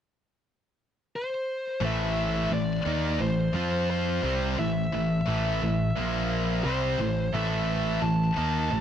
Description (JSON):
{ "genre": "metal", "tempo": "87 BPM", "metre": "4/4", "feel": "straight", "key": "A phrygian", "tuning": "A4 = 440 Hz", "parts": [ { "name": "high-gain lead guitar", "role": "melody", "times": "1.2-8.8 s", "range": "C5 to A5", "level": "-31 LUFS", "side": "equal", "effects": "distortion, tape echo" }, { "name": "heavy high-gain guitar", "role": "riff", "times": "1.8-8.8 s", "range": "A2 to F4", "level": "-30 LUFS", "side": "left 10 dB", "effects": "distortion" }, { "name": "tight distorted guitar", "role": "riff", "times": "1.8-8.8 s", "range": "A2 to F4", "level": "-31 LUFS", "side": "right 11 dB", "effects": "distortion" }, { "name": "growling picked electric bass", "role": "bass", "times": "1.8-8.8 s", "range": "A1 to F2", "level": "-29 LUFS", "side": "equal", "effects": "overdrive" } ], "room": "little or no reverb", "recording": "dry, close 1970s-style studio recording", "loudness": "-24 LUFS", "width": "side -9 dB against mid", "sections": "0.0-1.8 A section; 1.8-8.8 B section", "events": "none", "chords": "0.0 N.C.; 1.8 A5; 3.5 F5; 4.2 Am; 6.0 Bb5; 6.6 Am" }